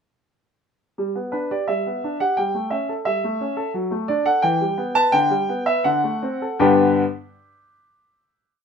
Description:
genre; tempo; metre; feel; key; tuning
classical-period piano sonatina; 77-89 BPM; 2/4; rubato; G major; A4 = 442 Hz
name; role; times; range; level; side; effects
clear concert grand piano; solo; 1.0-7.0 s; G2 to A5; -18 LUFS; equal; none
room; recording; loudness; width
light reverb; none; -19 LUFS; side -6 dB against mid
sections
1.0-6.6 A section; 6.6-8.1 final chord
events
slowing down 3.1-6.6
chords
1.0 G; 2.4 A7/G; 3.7 D/F#; 4.4 Em; 5.1 G/D; 5.9 D7; 6.6 G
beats
| 0.98 1.69 | 2.38 3.07 | 3.75 4.43 | 5.13 5.85 | 6.62

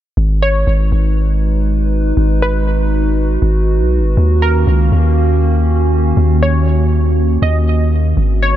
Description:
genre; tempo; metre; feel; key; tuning
hip hop; 120 BPM; 4/4; half-time; G# minor; A4 = 440 Hz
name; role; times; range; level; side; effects
warbly tape-like pad; sustained chords; 0.7-8.6 s; D#3 to B4; -18 LUFS; right 2 dB; chorus, built-in reverb
long sustained 808-style bass; bass; 0.2-8.6 s; G#1 to D#2; -13 LUFS; equal; none
glassy wavetable pluck; melody; 0.4-8.6 s; A#4 to D#5; -22 LUFS; equal; chorus, low-pass filter, digital delay
room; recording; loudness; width
digital ambience; dark, warm production; -11 LUFS; side -12 dB against mid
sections
0.2-8.6 A section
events
none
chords
0.2 G#m7; 4.2 D#m7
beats
| 0.17 0.67 1.17 1.67 | 2.17 2.67 3.17 3.67 | 4.17 4.67 5.17 5.67 | 6.17 6.67 7.17 7.67 | 8.17

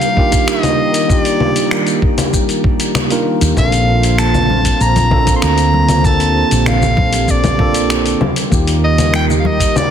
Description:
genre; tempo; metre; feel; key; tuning
sunset chillout; 97 BPM; 4/4; straight; Bb major; A4 = 440 Hz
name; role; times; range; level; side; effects
bright soprano saxophone; melody; 0.0-9.9 s; D5 to C6; -18 LUFS; equal; tape echo
tine electric piano; accompaniment; 0.0-9.9 s; Bb3 to Bb4; -18 LUFS; moving between left 4 dB and right 5 dB; auto-pan, tape echo
airy breathy pad; sustained chords; 0.0-9.9 s; D3 to C5; -21 LUFS; equal; chorus
dusty soul sampler-style drum kit; drums; 0.0-9.9 s; congas, finger snaps, hi-hat, shaker; -19 LUFS; left 2 dB; soft clipping on snare
electronic kick drum; drums; 0.2-9.7 s; none; -16 LUFS; equal; none
woody fretless electric bass; bass; 3.4-9.7 s; Bb1 to Eb2; -16 LUFS; equal; analog chorus
congas; percussion; 4.3-9.6 s; none; -22 LUFS; left 2 dB; none
room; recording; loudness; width
light reverb, digital ambience; dense, heavily limited modern master; -11 LUFS; side -8 dB against mid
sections
0.0-9.9 A section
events
none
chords
0.0 Ebmaj7; 3.6 Bbmaj9; 8.2 Eb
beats
0.48 | 1.10 1.72 2.34 2.95 | 3.57 4.19 4.81 5.43 | 6.05 6.67 7.28 7.90 | 8.52 9.14 9.76

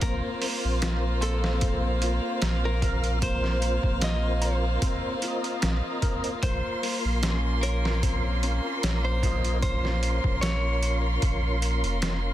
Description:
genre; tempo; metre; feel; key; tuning
trip hop; 75 BPM; 4/4; swing 54% on 16ths; Bb minor; A4 = 440 Hz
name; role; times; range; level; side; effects
clean lap steel guitar; melody; 0.0-11.0 s; A4 to Eb5; -34 LUFS; equal; tape echo
mellow tonewheel organ; accompaniment; 0.0-12.3 s; Bb3 to C6; -32 LUFS; equal; chorus vibrato, fast rotary speaker, tremolo, tape echo
warm studio violin section; sustained chords; 0.0-12.3 s; Bb3 to C6; -34 LUFS; right 1 dB; none
felt-muted upright piano; arpeggios; 0.0-9.6 s; Bb3 to C6; -36 LUFS; left 4 dB; tape echo
warm sub bass; bass; 0.0-12.3 s; F1 to Bb1; -26 LUFS; equal; none
trip hop sampler-style drum kit; drums; 0.0-12.2 s; hi-hat, kick drum, snare drum; -29 LUFS; equal; small room reverb
room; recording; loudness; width
light reverb; dense, heavily limited modern master; -24 LUFS; side -13 dB against mid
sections
0.0-12.3 A section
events
none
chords
0.0 Fsus4/Bb; 6.4 Bbmadd9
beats
| 0.02 0.82 1.62 2.42 | 3.22 4.02 4.82 5.62 | 6.42 7.22 8.02 8.82 | 9.62 10.42 11.22 12.02

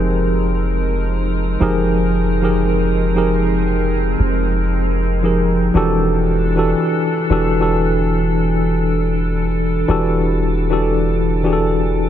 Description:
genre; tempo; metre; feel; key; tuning
R&B; 58 BPM; 4/4; swing 58% on 16ths; unclear; A4 = 440 Hz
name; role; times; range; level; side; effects
tine electric piano; accompaniment; 0.0-12.1 s; E3 to C5; -17 LUFS; left 1 dB; medium stereo tremolo
glassy FM pad; sustained chords; 0.0-12.1 s; E3 to Bb4; -23 LUFS; right 1 dB; ensemble chorus, built-in reverb
long sustained 808-style bass; bass; 0.0-12.1 s; E1 to F1; -19 LUFS; equal; none
room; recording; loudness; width
light reverb; none; -15 LUFS; side -10 dB against mid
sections
0.0-12.1 A section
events
none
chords
0.0 Fm11; 5.7 Em11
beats
0.57 | 1.61 2.64 3.68 4.71 | 5.75 6.78 7.82 8.85 | 9.88 10.92 11.95

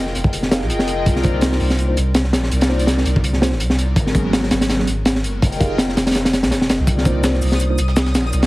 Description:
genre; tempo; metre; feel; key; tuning
drum and bass, jungle; 165 BPM; 4/4; swing 55% on 16ths; C minor; A4 = 439 Hz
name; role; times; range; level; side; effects
soft dub sub bass; bass; 0.0-8.5 s; Eb1 to C2; -20 LUFS; equal; none
crunchy breakbeat drum kit; drums; 0.1-8.5 s; hi-hat, kick drum, snare drum; -17 LUFS; equal; none
mellow tine electric piano; stabs; 0.5-7.8 s; Gb3 to F5; -26 LUFS; right 1 dB; medium stereo tremolo, dub echo
electronic shaker and snare drum; drums; 6.9-8.4 s; none; -29 LUFS; left 2 dB; high-pass filter on perc, high-pass filter on snare
twinkling granular texture; texture; 7.2-8.5 s; Eb6; -32 LUFS; left 2 dB; built-in reverb
room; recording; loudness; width
studio reverb; heavily compressed radio sound, multiband compression, vinyl crackle; -15 LUFS; side -19 dB against mid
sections
0.0-8.5 A section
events
none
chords
0.0 Fm11; 1.1 Cm11; 4.0 Abm11; 5.4 Fm11; 6.9 Cm11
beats
0.33 0.69 | 1.06 1.42 1.78 2.15 | 2.51 2.87 3.24 3.60 | 3.96 4.33 4.69 5.06 | 5.42 5.78 6.15 6.51 | 6.87 7.24 7.60 7.96 | 8.33

